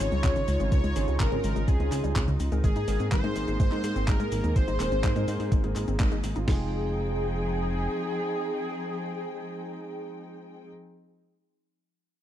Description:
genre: italo disco.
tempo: 125 BPM.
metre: 4/4.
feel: straight.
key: F minor.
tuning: A4 = 440 Hz.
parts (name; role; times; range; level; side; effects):
wide unison lead; melody; 0.0-10.7 s; Ab4 to Db5; -33 LUFS; equal; lush chorus, tape echo.
dark studio string section; sustained chords; 0.0-10.7 s; F3 to G5; -35 LUFS; left 2 dB; none.
wide unison pluck; arpeggios; 0.0-6.7 s; Db2 to Ab4; -34 LUFS; left 3 dB; tape echo.
dark concert grand piano; stabs; 0.0-10.7 s; Ab2 to Bb4; -36 LUFS; right 4 dB; none.
chorused synth bass; bass; 0.0-7.9 s; Eb1 to Ab2; -29 LUFS; equal; none.
clean 12-bit digital drum machine; drums; 0.0-6.5 s; cabasa, handclaps, hi-hat; -38 LUFS; equal; overdrive, studio reverb.
clean 12-bit digital drum machine; drums; 0.2-6.6 s; crash cymbal, kick drum, snare drum; -25 LUFS; equal; overdrive, studio reverb.
room: little or no reverb.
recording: dry, close 1970s-style studio recording.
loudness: -24 LUFS.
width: side -11 dB against mid.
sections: 0.0-6.5 A section; 6.5-10.3 B section.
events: band accent 6.0.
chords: 0.0 Dbmaj7; 2.6 Abadd9; 6.5 Fm7.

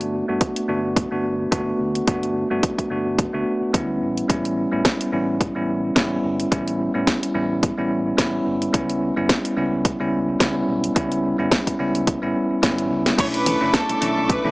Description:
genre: nu-disco, nu disco.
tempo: 108 BPM.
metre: 4/4.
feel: swing 56% on 16ths.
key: unclear.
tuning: A4 = 441 Hz.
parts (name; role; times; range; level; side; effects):
bell-like tine electric piano; accompaniment; 0.0-14.5 s; G3 to F#4; -21 LUFS; equal; fast stereo tremolo, sidechain pumping, low-pass filter, tape echo.
fingered electric bass with an envelope filter; bass; 0.0-14.5 s; F#1 to A2; -33 LUFS; equal; none.
house drum kit; drums; 0.0-14.4 s; crash cymbal, hi-hat, snare drum; -23 LUFS; equal; none.
electronic kick drum; drums; 0.4-14.4 s; none; -22 LUFS; equal; none.
rich studio violin section; melody; 13.2-14.5 s; A4 to C#5; -23 LUFS; equal; none.
dark studio string section; sustained chords; 13.2-14.5 s; A4 to D6; -28 LUFS; equal; sidechain pumping.
congas; percussion; 13.5-14.5 s; none; -30 LUFS; equal; none.
room: light reverb, digital ambience.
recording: dry, gritty hardware recording, small speaker sound.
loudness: -19 LUFS.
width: side -25 dB against mid.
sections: 0.0-14.5 A section.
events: drum fill 12.6-13.2.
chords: 0.0 Gmaj9; 4.0 A9; 8.7 C#m7b5; 13.2 Bm11.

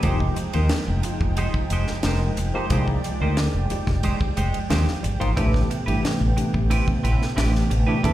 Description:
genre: electric jazz fusion.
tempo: 90 BPM.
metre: 4/4.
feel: straight.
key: unclear.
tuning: A4 = 441 Hz.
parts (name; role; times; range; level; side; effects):
tine electric piano; accompaniment; 0.0-8.1 s; E3 to G5; -28 LUFS; left 1 dB; fast stereo tremolo, slapback echo.
brassy analog pad; sustained chords; 0.0-8.1 s; C3 to G5; -29 LUFS; right 2 dB; chorus.
clean electric guitar; stabs; 0.0-8.1 s; Ab3 to C5; -31 LUFS; right 4 dB; analog chorus, slapback echo.
mellow fretless electric bass; bass; 0.0-8.1 s; F1 to E2; -22 LUFS; equal; lush chorus.
tight funk drum kit; drums; 0.0-8.1 s; hi-hat, kick drum, ride cymbal, snare drum; -28 LUFS; equal; none.
room: light reverb.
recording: live gig heard through the venue's PA, club reverb.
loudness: -20 LUFS.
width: side -14 dB against mid.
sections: 0.0-8.1 A section.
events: tine electric piano fill 4.0-5.4.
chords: 0.0 Fm9; 5.4 Am9.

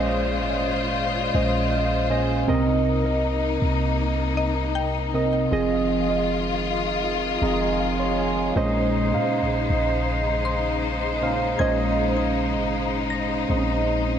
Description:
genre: R&B.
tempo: 79 BPM.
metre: 4/4.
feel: straight.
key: Bb minor.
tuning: A4 = 439 Hz.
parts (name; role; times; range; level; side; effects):
muted felt-like synth keys; accompaniment; 0.0-14.2 s; Bb2 to C6; -23 LUFS; right 2 dB; chorus.
warm studio string section; sustained chords; 0.0-14.2 s; C3 to C5; -27 LUFS; left 6 dB; none.
clean 808-style bass; bass; 0.0-14.2 s; F1 to Bb2; -28 LUFS; equal; none.
mallet-like synth pluck; texture; 0.0-5.9, 10.4-14.2 s; C5 to Bb6; -34 LUFS; left 5 dB; chorus, ping-pong delay.
room: light reverb.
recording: none.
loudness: -20 LUFS.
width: side -8 dB against mid.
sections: 0.0-14.2 A section.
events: synth keys fill 1.0-2.5, 7.0-8.6.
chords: 0.0 Bbm11; 2.5 Cm7; 5.5 Fm7; 8.6 Bbm11.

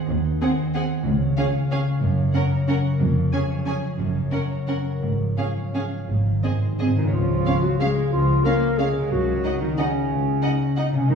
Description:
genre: classical, orchestral ballroom waltz.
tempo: 160-199 BPM.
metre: 3/4.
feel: rubato.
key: Db major.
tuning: A4 = 440 Hz.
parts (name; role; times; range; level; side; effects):
concert harp; arpeggios; 0.0-11.2 s; F2 to Ab5; -24 LUFS; left 2 dB; none.
dark symphonic double bass section; bass; 0.1-11.2 s; F1 to Eb2; -27 LUFS; right 3 dB; none.
warm symphonic cello section; bass; 0.1-11.2 s; Db2 to Bb3; -29 LUFS; right 3 dB; none.
warm symphonic violin section; melody; 0.4-10.8 s; Eb5 to Ab5; -36 LUFS; equal; none.
warm chamber violin section; second line; 0.4-10.9 s; Ab4 to F5; -35 LUFS; right 1 dB; none.
dark symphonic viola section; accompaniment; 0.4-10.9 s; C4 to Eb4; -29 LUFS; right 3 dB; none.
timpani; percussion; 6.1-7.1, 9.1-9.6 s; Ab2 to Db3; -28 LUFS; right 1 dB; none.
mellow clarinet; second line; 7.0-11.2 s; Db4 to Bb4; -24 LUFS; left 2 dB; none.
room: wet recital hall reverb, RT60 1.8 s.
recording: heard from further back in the room, studio ambience.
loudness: -20 LUFS.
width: side -6 dB against mid.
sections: 0.0-7.1 A section; 7.1-11.2 B section.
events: timpani fill 6.1-7.1.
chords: 0.0 Ab7/Eb; 1.1 Db; 2.0 Gb; 3.0 Db/F; 4.0 Gb; 5.0 Db/Ab; 6.1 Ab; 7.1 Db; 9.1 Ebm7/Db.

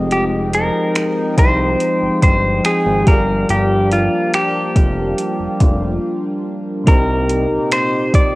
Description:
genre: contemporary R&B.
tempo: 71 BPM.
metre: 4/4.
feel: straight.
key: C minor.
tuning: A4 = 436 Hz.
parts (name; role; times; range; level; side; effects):
soft electric-piano-like synth keys; accompaniment; 0.0-8.4 s; C3 to G5; -24 LUFS; left 1 dB; chorus, tremolo.
chorused pulse-width pad; sustained chords; 0.0-8.4 s; Bb2 to G5; -21 LUFS; equal; none.
fat analog bass; bass; 0.0-8.2 s; F1 to C2; -20 LUFS; equal; none.
clean electric guitar; melody; 0.1-8.4 s; F4 to D5; -18 LUFS; equal; spring reverb, cassette tape.
smooth R&B drum kit; drums; 0.1-8.3 s; finger snaps, hi-hat, kick drum; -14 LUFS; equal; cassette tape.
room: little or no reverb.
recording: home recording on cassette.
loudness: -14 LUFS.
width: side -20 dB against mid.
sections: 0.0-6.9 A section; 6.9-8.4 B section.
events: break 6.0-6.9.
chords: 0.0 Fm9; 3.1 Gm7; 6.9 Cm7.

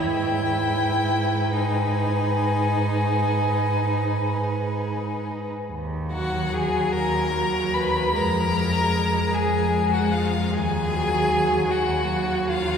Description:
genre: classical, slow romantic movement for string quartet.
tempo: 41-52 BPM (dotted quarters).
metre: 12/8.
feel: rubato.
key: G# minor, Eb minor from 5.7 s.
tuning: A4 = 441 Hz.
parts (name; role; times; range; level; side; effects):
clear violin; melody; 0.0-12.8 s; F5 to Cb6; -26 LUFS; left 4 dB; none.
clear violin; second line; 0.0-12.8 s; F4 to Cb5; -29 LUFS; left 1 dB; none.
clear viola; accompaniment; 0.0-12.8 s; Gb3 to E4; -26 LUFS; right 2 dB; none.
rich cello; bass; 0.0-12.7 s; Eb2 to G#2; -26 LUFS; right 1 dB; none.
room: wet cathedral reverb, RT60 4.4 s.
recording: heard from further back in the room.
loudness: -21 LUFS.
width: side -7 dB against mid.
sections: 0.0-5.7 A section; 5.7-12.8 B section.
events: none.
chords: 0.1 G#m; 5.7 Ebm; 8.1 Bb5/F; 10.5 Ebm.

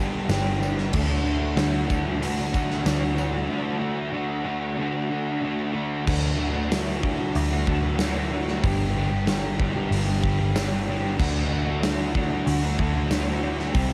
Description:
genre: rock, shoegaze and dream pop.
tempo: 94 BPM.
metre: 4/4.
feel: straight.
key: D major.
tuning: A4 = 440 Hz.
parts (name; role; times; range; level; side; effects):
raw garage guitar; riff; 0.0-13.9 s; G2 to G4; -31 LUFS; equal; overdrive, reverse reverb.
thick fuzz guitar; riff; 0.0-13.9 s; G2 to D4; -30 LUFS; equal; distortion, ensemble chorus.
vintage muted picked electric bass; bass; 0.0-13.9 s; G1 to D2; -30 LUFS; equal; none.
huge arena drum kit; drums; 0.3-13.9 s; crash cymbal, hi-hat, kick drum, snare drum; -30 LUFS; equal; cassette tape.
tambourine; percussion; 0.3-13.3 s; none; -46 LUFS; equal; none.
room: small room ambience.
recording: home recording on cassette.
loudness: -25 LUFS.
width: mono.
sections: 0.0-6.1 A section; 6.1-13.9 B section.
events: break 3.5-6.1.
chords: 0.0 G; 0.9 D; 8.6 G; 11.2 D.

